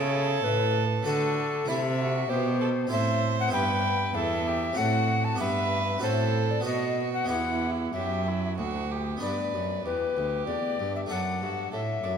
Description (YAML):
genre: classical, baroque-style sonata movement with continuo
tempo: 96 BPM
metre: 3/4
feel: straight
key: E minor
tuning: A4 = 441 Hz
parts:
  - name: tenor recorder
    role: melody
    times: 0.0-12.2 s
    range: A4 to A5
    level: -29 LUFS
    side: left 5 dB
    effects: none
  - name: warm violin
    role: second line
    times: 0.0-12.1 s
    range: E4 to D5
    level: -32 LUFS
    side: right 6 dB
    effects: none
  - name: harpsichord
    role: accompaniment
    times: 0.0-12.2 s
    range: D2 to B4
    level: -33 LUFS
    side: equal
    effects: none
  - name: rich cello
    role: bass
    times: 0.0-12.2 s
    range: D2 to D3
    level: -29 LUFS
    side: right 2 dB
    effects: none
room: wet concert hall reverb, RT60 2.4 s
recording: none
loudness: -25 LUFS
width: side -7 dB against mid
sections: 0.0-9.2 A section; 9.2-12.2 A section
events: none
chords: 0.0 A/C#; 1.1 D; 1.7 Am/C; 2.9 Am; 3.5 Em/G; 4.8 F#dim/A; 5.4 Em/G; 6.0 F#dim/A; 6.6 B7; 7.3 Em; 11.1 D/F#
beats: 0.44 1.06 | 1.68 2.29 2.92 | 3.53 4.15 4.77 | 5.39 6.02 6.65 | 7.29 7.93 8.58 | 9.22 9.85 10.48 | 11.10 11.73